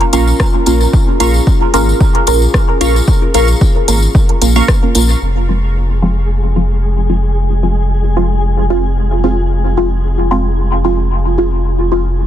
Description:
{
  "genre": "dub techno",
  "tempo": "112 BPM",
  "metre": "4/4",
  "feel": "swing 54% on 16ths",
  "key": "F minor",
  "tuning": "A4 = 439 Hz",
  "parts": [
    { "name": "dark analog pad", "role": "sustained chords", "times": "0.0-12.3 s", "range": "C4 to Bb4", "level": "-25 LUFS", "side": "left 3 dB", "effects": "chorus, sidechain pumping" },
    { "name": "deep house drum kit", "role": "drums", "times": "0.0-5.1 s", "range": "hi-hat, rim click", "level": "-21 LUFS", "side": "equal", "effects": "soft clipping on snare, dub echo" },
    { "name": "wavetable chord stab", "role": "riff", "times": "0.1-4.6 s", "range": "F5 to Db6", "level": "-24 LUFS", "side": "right 4 dB", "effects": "sidechain pumping, dub echo" },
    { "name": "filtered dub chord stab", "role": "stabs", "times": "0.1-12.1 s", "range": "F3 to Bb4", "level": "-16 LUFS", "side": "right 1 dB", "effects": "phaser, sidechain pumping, dub echo" },
    { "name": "warm sub bass", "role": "bass", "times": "0.1-12.3 s", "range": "F1 to Bb1", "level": "-13 LUFS", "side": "equal", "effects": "sidechain pumping" },
    { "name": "tambourine", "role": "percussion", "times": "0.1-5.2 s", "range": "none", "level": "-23 LUFS", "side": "left 5 dB", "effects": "none" },
    { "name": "electronic kick drum", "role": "drums", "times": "0.4-4.8 s", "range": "none", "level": "-12 LUFS", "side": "equal", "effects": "none" },
    { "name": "flickering grainy texture", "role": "texture", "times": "5.7-12.3 s", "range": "Ab3 to Ab4", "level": "-23 LUFS", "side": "left 2 dB", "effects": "built-in reverb, sidechain pumping" }
  ],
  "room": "digital ambience",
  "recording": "dense, heavily limited modern master",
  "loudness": "-10 LUFS",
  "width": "side -11 dB against mid",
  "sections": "0.0-5.2 A section; 5.2-12.3 B section",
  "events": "none",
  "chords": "0.0 Bbm; 5.2 Fm"
}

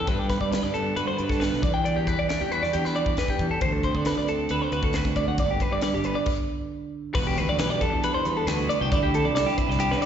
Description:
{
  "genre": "math rock and midwest emo",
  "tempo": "136 BPM",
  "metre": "4/4",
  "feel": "straight",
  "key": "G major",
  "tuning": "A4 = 440 Hz",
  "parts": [
    { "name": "clean electric guitar", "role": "accompaniment", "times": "0.0-10.1 s", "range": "E2 to A4", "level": "-30 LUFS", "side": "right 10 dB", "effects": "slapback echo" },
    { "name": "twelve-string electric guitar", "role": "arpeggios", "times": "0.0-10.1 s", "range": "G4 to G5", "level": "-26 LUFS", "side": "left 1 dB", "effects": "plate reverb, slapback echo" },
    { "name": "fuzz fingered electric bass", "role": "bass", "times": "0.1-10.1 s", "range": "E1 to G3", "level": "-28 LUFS", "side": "equal", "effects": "overdrive" },
    { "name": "crisp fusion drum kit", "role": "drums", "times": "0.1-10.1 s", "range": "crash cymbal, hi-hat, kick drum, snare drum", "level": "-29 LUFS", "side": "left 1 dB", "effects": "none" }
  ],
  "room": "light reverb",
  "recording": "live gig heard through the venue's PA, recital hall reverb, nothing above 7.9 kHz",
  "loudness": "-22 LUFS",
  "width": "side -8 dB against mid",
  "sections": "0.0-7.2 A section; 7.2-10.1 B section",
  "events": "stop 6.3-7.2",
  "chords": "0.1 Gmaj7; 1.6 Em7; 3.6 D7; 5.4 G; 7.2 Em11; 8.9 D9sus4"
}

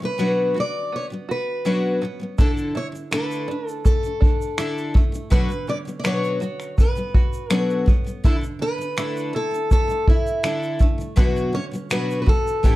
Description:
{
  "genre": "acoustic pop",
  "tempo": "82 BPM",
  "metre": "4/4",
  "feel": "straight",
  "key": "unclear",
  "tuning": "A4 = 440 Hz",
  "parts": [
    { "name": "picked steel-string acoustic guitar", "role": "melody", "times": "0.0-12.8 s", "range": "E4 to D5", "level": "-26 LUFS", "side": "equal", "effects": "plate reverb" },
    { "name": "picked twelve-string acoustic guitar", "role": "accompaniment", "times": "0.0-12.8 s", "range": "A2 to C#5", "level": "-24 LUFS", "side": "left 2 dB", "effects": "plate reverb" },
    { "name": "open-back banjo", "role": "arpeggios", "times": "0.0-12.8 s", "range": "D3 to F#4", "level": "-34 LUFS", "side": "right 6 dB", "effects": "plate reverb, digital delay" },
    { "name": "vintage brush drum kit", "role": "drums", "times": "2.4-12.8 s", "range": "finger snaps, kick drum, shaker", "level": "-18 LUFS", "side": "equal", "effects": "none" }
  ],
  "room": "little or no reverb",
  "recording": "dark, warm production",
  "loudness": "-19 LUFS",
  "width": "side -17 dB against mid",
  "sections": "0.0-12.8 A section",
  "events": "none",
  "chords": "0.0 Bmadd9; 2.4 Dsus2; 5.3 Bmadd9; 8.2 Dsus2; 11.2 Bmadd9"
}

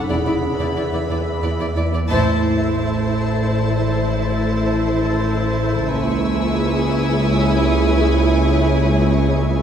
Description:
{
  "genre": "cinematic, suspense film score",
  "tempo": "95 BPM",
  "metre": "3/4",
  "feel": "straight",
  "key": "unclear",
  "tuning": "A4 = 437 Hz",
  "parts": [
    { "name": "warm symphonic violin section", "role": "melody", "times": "0.0-9.6 s", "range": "G#5 to B5", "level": "-30 LUFS", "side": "left 3 dB", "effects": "none" },
    { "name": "dark clarinet", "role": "second line", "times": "0.0-1.7 s", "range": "G#4", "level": "-27 LUFS", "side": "right 1 dB", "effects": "none" },
    { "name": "flickering grainy texture", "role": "sustained chords", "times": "0.0-9.6 s", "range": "G#4 to F#5", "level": "-25 LUFS", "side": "equal", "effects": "built-in reverb" },
    { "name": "metallic inharmonic drone", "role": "drone", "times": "0.0-9.6 s", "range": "A1 to E2", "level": "-26 LUFS", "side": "left 1 dB", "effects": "chorus, built-in reverb" },
    { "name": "vibraphone with medium mallets", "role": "texture", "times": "0.0-9.6 s", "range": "Bb3 to Bb5", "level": "-28 LUFS", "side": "equal", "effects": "none" },
    { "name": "warm symphonic violin section", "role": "second line", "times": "0.1-9.6 s", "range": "B4 to D5", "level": "-28 LUFS", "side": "left 1 dB", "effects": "none" },
    { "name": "dark symphonic viola section", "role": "accompaniment", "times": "0.1-9.6 s", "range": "E4", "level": "-23 LUFS", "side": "right 1 dB", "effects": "none" },
    { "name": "warm symphonic cello section", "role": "bass", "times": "0.1-9.6 s", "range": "C#2 to A2", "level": "-22 LUFS", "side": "right 1 dB", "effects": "none" },
    { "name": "warm symphonic double bass section", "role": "bass", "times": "0.1-9.6 s", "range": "E1 to C#2", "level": "-22 LUFS", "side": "right 1 dB", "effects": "none" },
    { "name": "warm studio violin section", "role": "texture", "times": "5.9-9.3 s", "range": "C#6 to E6", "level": "-30 LUFS", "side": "left 4 dB", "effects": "none" }
  ],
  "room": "wet scoring stage reverb, RT60 1.6 s",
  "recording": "heard from further back in the room",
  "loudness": "-16 LUFS",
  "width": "side -8 dB against mid",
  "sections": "0.0-2.1 A section; 2.1-9.6 B section",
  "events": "band accent 2.1-2.7",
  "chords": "0.1 E7; 2.1 Am; 5.9 C#m7"
}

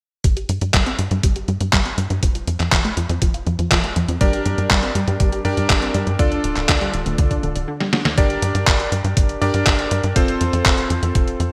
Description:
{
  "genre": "italo disco",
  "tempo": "121 BPM",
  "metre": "4/4",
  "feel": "straight",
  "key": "G minor",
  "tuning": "A4 = 440 Hz",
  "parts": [
    { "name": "unison pluck", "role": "arpeggios", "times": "0.2-8.1 s", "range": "D2 to G4", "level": "-28 LUFS", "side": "equal", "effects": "delay" },
    { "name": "tight sequencer bass", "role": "bass", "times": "0.2-11.5 s", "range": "D1 to G2", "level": "-25 LUFS", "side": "equal", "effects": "tube saturation" },
    { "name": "detuned 8-bit digital drum machine", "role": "drums", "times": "0.2-11.5 s", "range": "handclaps, hi-hat, snare drum", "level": "-24 LUFS", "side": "equal", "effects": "studio ambience, gated reverb" },
    { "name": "electronic kick drum", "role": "drums", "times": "0.2-11.3 s", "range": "none", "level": "-21 LUFS", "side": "equal", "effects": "studio ambience" },
    { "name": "bright electric grand piano", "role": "stabs", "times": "4.2-11.5 s", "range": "C4 to D5", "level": "-25 LUFS", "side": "equal", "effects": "delay" }
  ],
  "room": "moderate lush hall reverb, RT60 2.1 s",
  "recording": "bright 1980s-style digital production",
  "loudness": "-19 LUFS",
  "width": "mono",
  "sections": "0.2-8.2 A section; 8.2-11.5 B section",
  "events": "filter sweep on synth arpeggio sound 0.2-8.2; drum fill 7.8-8.2",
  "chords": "0.2 Gsus4; 2.2 F; 4.2 Gm; 6.2 Dm; 8.2 Gm; 10.2 F"
}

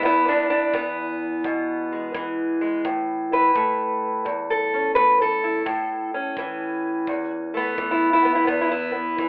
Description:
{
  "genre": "acoustic country blues, solo or duo",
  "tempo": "85 BPM",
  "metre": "4/4",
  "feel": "swing 65% on 8ths",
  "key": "unclear",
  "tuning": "A4 = 440 Hz",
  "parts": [
    { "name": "fingerpicked steel-string acoustic guitar", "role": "melody", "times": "0.0-9.3 s", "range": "E2 to B4", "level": "-20 LUFS", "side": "equal", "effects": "none" },
    { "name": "kick drum", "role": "drums", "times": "0.0-9.3 s", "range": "none", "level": "-39 LUFS", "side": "equal", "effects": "none" }
  ],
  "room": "wet studio reverb, RT60 0.6 s",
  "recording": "telephone sound",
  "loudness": "-20 LUFS",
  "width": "side -29 dB against mid",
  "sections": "0.0-9.3 A section",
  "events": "none",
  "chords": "0.0 E; 2.9 A; 8.5 E5"
}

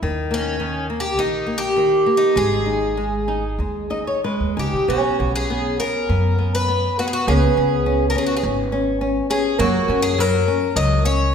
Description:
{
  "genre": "fado-style ballad",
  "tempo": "102 BPM",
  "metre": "4/4",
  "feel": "rubato",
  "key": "G# harmonic minor",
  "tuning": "A4 = 438 Hz",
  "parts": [
    { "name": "flamenco guitar", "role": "accompaniment", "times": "0.0-11.3 s", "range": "D#3 to D#5", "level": "-24 LUFS", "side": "left 2 dB", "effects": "none" },
    { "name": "upright bass", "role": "bass", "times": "0.0-11.3 s", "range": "G#1 to F#2", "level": "-23 LUFS", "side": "equal", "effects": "none" },
    { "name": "picked twelve-string acoustic guitar", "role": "melody", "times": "0.3-11.3 s", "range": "C#4 to D#5", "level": "-21 LUFS", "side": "left 1 dB", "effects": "none" },
    { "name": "fingerpicked twelve-string acoustic guitar", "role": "second line", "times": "4.9-11.3 s", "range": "A#3 to C#4", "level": "-23 LUFS", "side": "right 4 dB", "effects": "none" }
  ],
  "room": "wet recital hall reverb, RT60 1.4 s",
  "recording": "recorded in a church or concert hall",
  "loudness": "-17 LUFS",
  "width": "side -7 dB against mid",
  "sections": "0.0-4.9 A section; 4.9-11.3 B section",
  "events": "nylon-string guitar fill 3.6-4.9",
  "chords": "0.0 D#; 2.4 G#m; 4.9 Bsus2; 7.3 C#5; 9.6 F#"
}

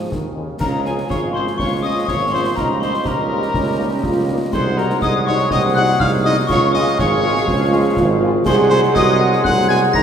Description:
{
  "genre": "military-style march for wind band",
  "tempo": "122 BPM",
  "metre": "2/4",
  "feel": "straight",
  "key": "Db major",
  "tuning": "A4 = 440 Hz",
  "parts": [
    { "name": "warm cornet", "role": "melody", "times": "0.0-10.0 s", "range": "Ab4 to Bb5", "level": "-23 LUFS", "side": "equal", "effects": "none" },
    { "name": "glockenspiel with hard plastic mallets", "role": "second line", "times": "0.0-10.0 s", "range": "Ab5 to Bb6", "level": "-24 LUFS", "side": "left 5 dB", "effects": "none" },
    { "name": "warm euphonium", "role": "second line", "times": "0.0-10.0 s", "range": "Ab3 to Ab4", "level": "-22 LUFS", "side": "right 3 dB", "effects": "none" },
    { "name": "warm woodwind section", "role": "second line", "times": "0.0-10.0 s", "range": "G4 to Gb5", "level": "-27 LUFS", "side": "equal", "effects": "none" },
    { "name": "wooden piccolo", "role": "second line", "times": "0.0-10.0 s", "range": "Ab5 to Bb6", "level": "-26 LUFS", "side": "left 4 dB", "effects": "none" },
    { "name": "bright trombone section", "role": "sustained chords", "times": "0.0-10.0 s", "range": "Db3 to Ab3", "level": "-26 LUFS", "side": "right 3 dB", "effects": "none" },
    { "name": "warm tuba", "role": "bass", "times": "0.0-10.0 s", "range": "Ab1 to Eb2", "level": "-20 LUFS", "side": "right 2 dB", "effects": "none" },
    { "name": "concert snare drum, concert bass drum and clash cymbals", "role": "drums", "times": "0.1-10.0 s", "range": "none", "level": "-26 LUFS", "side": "left 1 dB", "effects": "none" },
    { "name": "mellow French horn section", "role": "accompaniment", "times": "0.3-9.8 s", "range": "G3 to Ab4", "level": "-27 LUFS", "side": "left 3 dB", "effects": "none" }
  ],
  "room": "wet recital hall reverb, RT60 1.8 s",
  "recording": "recorded in a church or concert hall",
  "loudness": "-14 LUFS",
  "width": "side -8 dB against mid",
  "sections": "0.6-10.0 A section",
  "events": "none",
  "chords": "0.0 Ab; 0.6 Db; 2.6 Eb7/Db; 4.5 Ab7/C; 6.5 Db; 8.5 Ab7/C"
}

